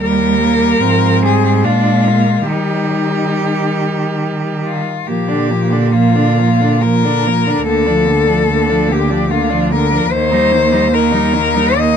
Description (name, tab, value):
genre	classical, lyrical piece for cello ensemble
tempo	71 BPM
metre	3/4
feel	uneven beats, rubato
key	Eb major, Bb major from 5.1 s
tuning	A4 = 440 Hz
part	rich cello	melody	0.0-12.0 s	Eb4 to Eb5	-16 LUFS	left 5 dB	none
part	rich cello	second line	0.0-12.0 s	G3 to G4	-19 LUFS	right 8 dB	none
part	rich cello	accompaniment	0.0-12.0 s	D3 to Ab3	-19 LUFS	left 3 dB	none
part	rich cello	bass	0.0-12.0 s	D2 to Eb3	-16 LUFS	right 3 dB	none
room	light reverb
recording	close, detailed microphones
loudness	-12 LUFS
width	side -7 dB against mid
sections	0.0-5.1 A section; 5.1-12.0 B section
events	none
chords	0.0 Eb; 0.8 Fm/Ab; 1.6 Bb7; 2.5 Eb; 5.1 Bb; 7.7 Bb/D; 10.1 Eb